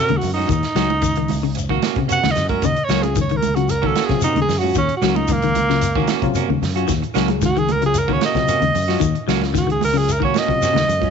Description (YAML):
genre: afrobeat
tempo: 113 BPM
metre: 4/4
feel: straight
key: Eb dorian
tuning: A4 = 440 Hz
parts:
  - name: bright alto saxophone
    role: melody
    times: 0.0-11.1 s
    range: Bb3 to Gb5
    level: -20 LUFS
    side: right 2 dB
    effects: none
  - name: clean electric guitar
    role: stabs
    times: 0.0-11.1 s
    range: Bb3 to Gb4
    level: -26 LUFS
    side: right 14 dB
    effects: none
  - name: sustaining fretless electric bass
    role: bass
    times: 0.0-11.1 s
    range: Db2 to C3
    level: -23 LUFS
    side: equal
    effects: none
  - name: clean electric guitar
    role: arpeggios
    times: 0.1-10.9 s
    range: Db3 to Gb3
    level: -23 LUFS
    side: left 14 dB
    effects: none
  - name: crunchy breakbeat drum kit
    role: drums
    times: 0.1-11.1 s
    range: hi-hat, kick drum, snare drum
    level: -26 LUFS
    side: right 4 dB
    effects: none
  - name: congas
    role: percussion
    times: 0.1-11.1 s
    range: none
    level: -28 LUFS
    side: right 13 dB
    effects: none
  - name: shekere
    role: percussion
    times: 0.2-11.0 s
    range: none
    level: -28 LUFS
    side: left 4 dB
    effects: none
  - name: reed electric piano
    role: accompaniment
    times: 3.0-11.1 s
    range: Gb3 to Ab4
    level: -27 LUFS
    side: left 15 dB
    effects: overdrive
room: light reverb, small room ambience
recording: 1960s-style stereo with parts hard left and right, nothing above 7.8 kHz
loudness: -16 LUFS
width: side -6 dB against mid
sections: 0.0-11.1 A section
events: alto saxophone solo 0.0-11.1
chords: 0.0 Ebm7